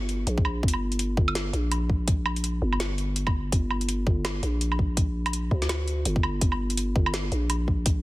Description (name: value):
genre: half-time drum and bass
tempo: 166 BPM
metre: 4/4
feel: swing 59% on 16ths, half-time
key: G minor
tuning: A4 = 440 Hz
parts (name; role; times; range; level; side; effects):
- growling 808-style bass; bass; 0.0-8.0 s; G1 to D2; -27 LUFS; equal; none
- drum and bass drum kit; drums; 0.1-7.9 s; hi-hat, snare drum, woodblock; -30 LUFS; right 1 dB; none
- electronic kick drum; drums; 0.4-7.9 s; none; -24 LUFS; equal; none
room: little or no reverb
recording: dense, heavily limited modern master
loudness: -24 LUFS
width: side -18 dB against mid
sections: 0.0-8.0 A section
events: none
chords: none